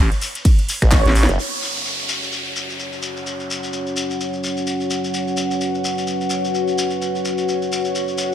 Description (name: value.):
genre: bass house.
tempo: 128 BPM.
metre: 4/4.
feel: swing 58% on 16ths.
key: unclear.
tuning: A4 = 442 Hz.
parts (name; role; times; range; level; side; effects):
growling FM bass; bass; 0.0-1.3 s; A1; -16 LUFS; equal; tube saturation, sidechain pumping.
garage drum kit; drums; 0.1-1.4 s; finger snaps, handclaps, hi-hat, ride cymbal, snare drum; -23 LUFS; equal; low-pass filter on snare, studio reverb, low-pass filter on hats, low-pass filter on cymbals.
shekere; percussion; 0.1-8.3 s; none; -27 LUFS; left 3 dB; none.
electronic kick drum; drums; 0.5-1.0 s; none; -14 LUFS; equal; studio reverb.
formant-sweep wobble bass; bass; 0.8-1.4 s; F#1 to A1; -19 LUFS; equal; chorus, overdrive, sidechain pumping.
breathy flute-like synth lead; melody; 0.9-1.3 s; C#5; -28 LUFS; right 2 dB; ensemble chorus, tape echo.
dark analog pad; sustained chords; 1.4-8.3 s; F#3 to F#5; -25 LUFS; right 2 dB; chorus, sidechain pumping.
downlifter and swell; sound effects; 1.4-5.1, 8.1-8.3 s; none; -27 LUFS; right 1 dB; none.
warbly tape-like pad; texture; 2.7-8.3 s; F#4 to F#5; -25 LUFS; left 5 dB; chorus, built-in reverb, phaser, sidechain pumping.
room: moderate lush hall reverb, RT60 1.6 s.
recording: none.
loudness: -18 LUFS.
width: side -10 dB against mid.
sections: 0.0-1.4 A section; 1.4-8.3 B section.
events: drop 0.0-1.4; drum fill 0.9-1.4.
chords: 0.0 N.C.; 1.4 F#5.